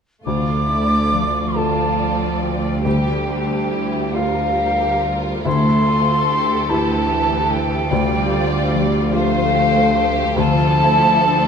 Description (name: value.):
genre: cinematic, emotional film score for orchestra.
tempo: 47 BPM (dotted quarters).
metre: 6/8.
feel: uneven beats, rubato.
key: D minor.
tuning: A4 = 440 Hz.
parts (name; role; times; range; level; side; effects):
silver concert flute; second line; 0.2-11.5 s; F5 to D6; -20 LUFS; equal; none.
muted studio violin section; melody; 0.3-11.5 s; G4 to D5; -28 LUFS; left 2 dB; none.
muted studio violin section; second line; 0.3-11.5 s; D4 to G4; -27 LUFS; left 2 dB; none.
felt-muted upright piano; accompaniment; 0.3-11.5 s; D2 to A4; -24 LUFS; left 1 dB; none.
muted studio viola section; accompaniment; 0.3-11.5 s; E3 to A3; -24 LUFS; right 1 dB; none.
concert harp; arpeggios; 0.3-11.5 s; D3 to G5; -26 LUFS; left 8 dB; none.
muted studio cello section; bass; 0.3-11.5 s; D2; -23 LUFS; right 3 dB; none.
room: wet recital hall reverb, RT60 1.6 s.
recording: none.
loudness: -15 LUFS.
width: side -6 dB against mid.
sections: 0.3-11.5 A section.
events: none.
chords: 0.3 Dm; 2.9 Csus4/D; 5.5 Am7/D; 7.9 Fadd9/D; 10.4 Dm.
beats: | 0.26 1.55 | 2.85 4.13 | 5.46 6.70 | 7.91 9.13 | 10.38.